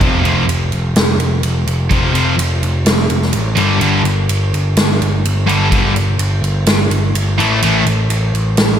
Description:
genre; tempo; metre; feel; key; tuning
hard rock; 126 BPM; 4/4; straight; unclear; A4 = 437 Hz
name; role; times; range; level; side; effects
cranked stack guitar; riff; 0.0-7.8 s; F2 to A3; -19 LUFS; left 9 dB; overdrive, slapback echo
scooped high-gain guitar; riff; 0.0-7.8 s; F2 to A3; -19 LUFS; right 8 dB; distortion
overdriven picked electric bass; bass; 0.0-8.8 s; F1 to A1; -15 LUFS; equal; none
big rock drum kit; drums; 0.0-8.7 s; kick drum, ride cymbal, snare drum; -17 LUFS; right 1 dB; none
room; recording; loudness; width
light reverb; none; -12 LUFS; side -9 dB against mid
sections
0.0-8.8 A section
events
none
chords
0.0 F5; 3.6 G5; 7.4 A5

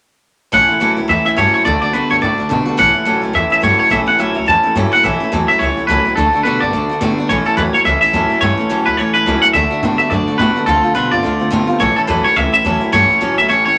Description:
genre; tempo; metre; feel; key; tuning
rock; 213 BPM; 4/4; swing 60% on 8ths; A major; A4 = 441 Hz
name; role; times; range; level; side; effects
twangy electric guitar; melody; 0.5-13.8 s; A4 to A5; -16 LUFS; equal; none
picked steel-string acoustic guitar; accompaniment; 0.5-13.8 s; A2 to F#4; -21 LUFS; equal; none
electric guitar through a small old amp; riff; 0.5-13.8 s; A2 to B3; -23 LUFS; equal; warbly pitch drift
upright bass; bass; 0.5-13.8 s; A1 to B2; -24 LUFS; equal; none
room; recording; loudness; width
wet small room reverb, RT60 0.5 s; none; -14 LUFS; mono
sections
0.5-5.0 A section; 5.0-13.8 B section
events
none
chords
0.5 A; 1.7 D; 2.8 A; 6.2 D; 7.3 A; 9.5 D; 10.7 Dm7; 11.8 A

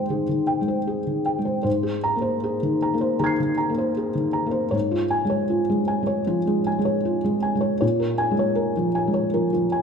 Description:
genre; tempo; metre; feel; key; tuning
neoclassical minimalist piano; 78 BPM; 4/4; rubato; Ab major; A4 = 439 Hz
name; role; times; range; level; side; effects
felt-muted upright piano; solo; 0.0-9.8 s; Ab2 to C7; -20 LUFS; equal; none
room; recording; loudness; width
moderate large studio reverb, RT60 1.3 s; band playing live in one room; -20 LUFS; side -6 dB against mid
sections
0.0-1.7 A section; 1.7-9.8 A section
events
none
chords
0.0 Abmaj7; 1.7 Abadd9; 4.7 Db/Ab; 7.8 Bbm7

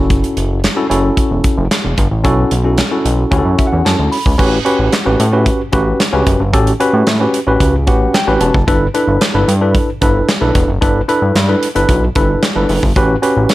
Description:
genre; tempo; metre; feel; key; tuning
early-eighties boogie funk; 112 BPM; 4/4; straight; unclear; A4 = 439 Hz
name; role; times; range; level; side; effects
tine electric piano; accompaniment; 0.0-13.5 s; C#4 to B5; -15 LUFS; equal; medium stereo tremolo
fat analog bass; bass; 0.0-13.5 s; E1 to A2; -15 LUFS; equal; none
modern studio drum kit; drums; 0.1-13.5 s; crash cymbal, handclaps, hi-hat, kick drum, snare drum; -16 LUFS; equal; gated reverb
room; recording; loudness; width
little or no reverb; none; -11 LUFS; side -16 dB against mid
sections
0.0-4.4 A section; 4.4-13.5 B section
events
tine electric piano fill 3.3-4.4, 7.6-8.7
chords
0.0 F#m7; 2.2 B7sus4; 3.3 Dmaj7; 4.4 A13; 8.7 G69; 13.0 A13

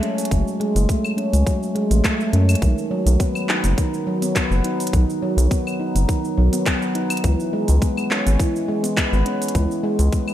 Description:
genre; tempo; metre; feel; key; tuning
organic downtempo; 104 BPM; 4/4; swing 53% on 16ths; unclear; A4 = 442 Hz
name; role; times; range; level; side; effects
handpan; arpeggios; 0.0-10.3 s; D#3 to D#4; -21 LUFS; equal; diffuse ambient delay
organic electronic drum kit; drums; 0.0-10.3 s; cabasa, claves, handclaps, hi-hat; -26 LUFS; equal; overdrive
round analog bass; bass; 0.3-10.1 s; F#1 to F#2; -17 LUFS; equal; tube saturation, sidechain pumping
electronic kick drum; drums; 0.3-10.2 s; none; -22 LUFS; equal; overdrive
room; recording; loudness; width
moderate lush hall reverb, RT60 1.6 s; dreamy mix soaked in reverb; -17 LUFS; side -12 dB against mid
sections
0.0-10.3 A section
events
none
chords
0.0 F#madd9; 2.6 B; 7.2 C#m7

